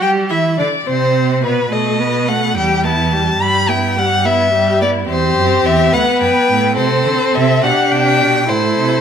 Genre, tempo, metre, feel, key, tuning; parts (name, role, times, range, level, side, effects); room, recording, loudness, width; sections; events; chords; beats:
quick classical-period movement for string quartet; 71 BPM (dotted quarters); 6/8; rubato; E minor; A4 = 436 Hz
rich violin; melody; 0.0-9.0 s; E4 to G5; -19 LUFS; left 8 dB
rich violin; second line; 0.0-9.0 s; B4 to B5; -16 LUFS; left 2 dB
warm viola; accompaniment; 0.0-9.0 s; G3 to G4; -20 LUFS; right 3 dB
rich cello; bass; 0.0-9.0 s; D2 to G3; -19 LUFS; right 6 dB
wet recital hall reverb, RT60 1.5 s; -12 LUFS; side -8 dB against mid
0.0-9.0 A section
0.0 Cmaj9; 1.7 B7; 2.6 Em; 3.4 Em/G; 5.1 C/E; 5.9 B5; 6.8 Am/C; 7.6 G; 8.5 Am
| 0.01 0.87 | 1.71 2.56 | 3.41 4.25 | 5.09 5.93 | 6.77 7.63 | 8.49